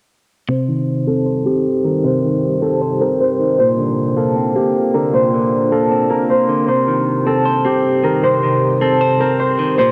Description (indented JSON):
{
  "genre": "hip hop",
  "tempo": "155 BPM",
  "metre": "4/4",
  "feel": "half-time",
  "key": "C dorian",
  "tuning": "A4 = 440 Hz",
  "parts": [
    { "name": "Celtic harp", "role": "melody", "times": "0.5-9.9 s", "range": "G4 to C5", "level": "-19 LUFS", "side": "equal", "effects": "low-pass filter, cassette tape" },
    { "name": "clean electric guitar", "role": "accompaniment", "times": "0.5-9.9 s", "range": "Bb2 to C5", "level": "-20 LUFS", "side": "equal", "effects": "low-pass filter, cassette tape" },
    { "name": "ethereal airy pad", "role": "sustained chords", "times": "1.4-9.9 s", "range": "C3 to G4", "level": "-27 LUFS", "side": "equal", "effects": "ensemble chorus, built-in reverb, low-pass filter, cassette tape" }
  ],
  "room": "light reverb, small room ambience",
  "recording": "home recording on cassette",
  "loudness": "-16 LUFS",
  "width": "mono",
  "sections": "0.5-9.9 A section",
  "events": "filter sweep 0.5-9.9",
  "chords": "0.5 Cm; 3.6 Bbadd9; 6.7 Cm"
}